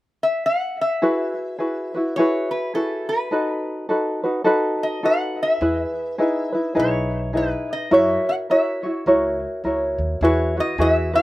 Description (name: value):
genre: Hawaiian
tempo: 104 BPM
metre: 4/4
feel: swing 61% on 8ths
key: E major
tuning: A4 = 440 Hz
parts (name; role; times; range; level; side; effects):
- lap resonator guitar; melody; 0.2-11.2 s; A4 to F#5; -23 LUFS; left 1 dB; slapback echo
- tenor ukulele; accompaniment; 1.0-11.2 s; D#4 to C#5; -20 LUFS; equal; none
- upright bass; bass; 5.6-11.2 s; B1 to F#2; -26 LUFS; right 1 dB; none
room: light reverb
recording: recorded outdoors, with no room sound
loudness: -19 LUFS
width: side -17 dB against mid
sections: 0.0-1.0 A section; 1.0-10.2 B section; 10.2-11.2 C section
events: none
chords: 0.0 N.C.; 1.0 Eadd9; 3.3 B7; 5.6 Emaj7; 7.9 F#7; 10.2 Eadd9